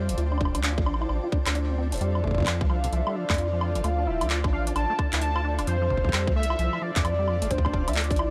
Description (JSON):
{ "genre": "IDM", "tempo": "131 BPM", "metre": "4/4", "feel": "swing 62% on 16ths", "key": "unclear", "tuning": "A4 = 440 Hz", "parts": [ { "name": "granular cloud pad", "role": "sustained chords", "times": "0.0-8.3 s", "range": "D4 to A5", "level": "-39 LUFS", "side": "equal", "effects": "built-in reverb" }, { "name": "deep acid bass", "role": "arpeggios", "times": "0.0-8.3 s", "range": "C3 to F4", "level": "-34 LUFS", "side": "equal", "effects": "delay" }, { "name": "round analog bass", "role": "bass", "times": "0.0-8.3 s", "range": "D1 to F2", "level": "-29 LUFS", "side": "equal", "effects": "none" }, { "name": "flickering grainy texture", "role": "texture", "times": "0.0-8.3 s", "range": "D5", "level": "-47 LUFS", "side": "equal", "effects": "none" }, { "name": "booming analog drum machine", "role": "drums", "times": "0.1-8.3 s", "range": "handclaps, hi-hat, woodblock", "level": "-33 LUFS", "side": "equal", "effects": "overdrive" }, { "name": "electronic kick drum", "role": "drums", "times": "0.4-8.2 s", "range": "none", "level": "-29 LUFS", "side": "equal", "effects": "overdrive" }, { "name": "warm velvety synth lead", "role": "melody", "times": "2.0-8.3 s", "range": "C5 to A5", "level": "-32 LUFS", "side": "equal", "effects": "chorus, delay" } ], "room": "digital ambience", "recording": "none", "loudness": "-26 LUFS", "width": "mono", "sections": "0.0-8.3 A section", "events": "none", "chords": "0.2 Dm7; 2.0 F6; 3.8 Dm7; 5.7 F6; 7.5 Dm7", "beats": "| 0.18 0.64 1.09 1.55 | 2.01 2.47 2.93 3.38 | 3.84 4.30 4.76 5.22 | 5.67 6.13 6.59 7.05 | 7.51 7.96" }